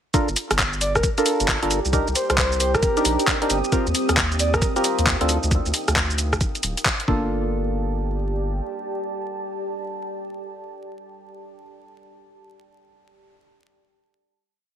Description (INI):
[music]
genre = UK garage, two-step garage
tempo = 134 BPM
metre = 4/4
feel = swing 64% on 16ths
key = G minor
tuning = A4 = 440 Hz
[part]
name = percussive organ stab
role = stabs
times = 0.1-10.4 s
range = Bb3 to Bb4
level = -24 LUFS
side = equal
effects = chorus, phaser, digital delay
[part]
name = electronic kick drum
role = drums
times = 0.1-7.2 s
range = none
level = -24 LUFS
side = equal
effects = none
[part]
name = garage drum kit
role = drums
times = 0.1-7.1 s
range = handclaps, hi-hat, rim click, shaker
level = -22 LUFS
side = equal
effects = none
[part]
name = deep dark ambient pad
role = texture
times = 1.3-10.8 s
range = C4 to Eb6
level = -30 LUFS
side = right 1 dB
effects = chorus, built-in reverb, sidechain pumping
[part]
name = soft dub sub bass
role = bass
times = 0.3-8.6 s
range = D1 to Eb2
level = -25 LUFS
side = equal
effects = none
[part]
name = breathy flute-like synth lead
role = melody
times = 0.8-4.7 s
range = Bb4 to D5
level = -25 LUFS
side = equal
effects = chorus
[sound]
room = light reverb, digital ambience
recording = vinyl crackle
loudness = -19 LUFS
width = side -9 dB against mid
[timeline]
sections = 0.1-7.3 drop; 7.3-10.9 final note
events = drop 0.1-7.3; band accent 6.9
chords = 0.1 Gm7; 1.9 Cm7; 3.7 Eb69; 5.3 Dm; 7.1 Gm7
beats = | 0.14 0.59 1.04 1.48 | 1.93 2.38 2.83 3.27 | 3.72 4.17 4.62 5.07 | 5.51 5.96 6.41 6.86 | 7.30 7.75 8.20 8.65 | 9.10 9.54 9.99 10.44